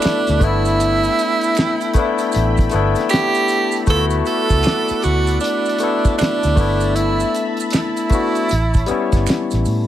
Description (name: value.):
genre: R&B, neo-soul.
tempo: 78 BPM.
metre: 4/4.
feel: swing 63% on 16ths.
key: unclear.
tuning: A4 = 439 Hz.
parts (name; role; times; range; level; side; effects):
breathy tenor saxophone; melody; 0.0-9.2 s; D4 to A4; -20 LUFS; right 4 dB; none.
barky tine electric piano; accompaniment; 0.0-9.9 s; G3 to A4; -20 LUFS; left 6 dB; overdrive.
lush unison pad; sustained chords; 0.0-9.9 s; A4 to B5; -29 LUFS; equal; chorus.
cloth-damped thuddy drum kit; drums; 0.0-9.9 s; hi-hat, kick drum, snare drum; -20 LUFS; equal; none.
finger snaps and maracas; percussion; 0.0-9.9 s; none; -32 LUFS; right 10 dB; none.
vintage muted fingered electric bass; bass; 0.1-9.9 s; G1 to A2; -19 LUFS; right 1 dB; none.
room: moderate studio reverb, RT60 0.6 s.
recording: none.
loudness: -15 LUFS.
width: side -12 dB against mid.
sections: 0.0-9.9 A section.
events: none.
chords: 0.4 G69; 3.9 D6; 6.6 G69; 8.5 A9.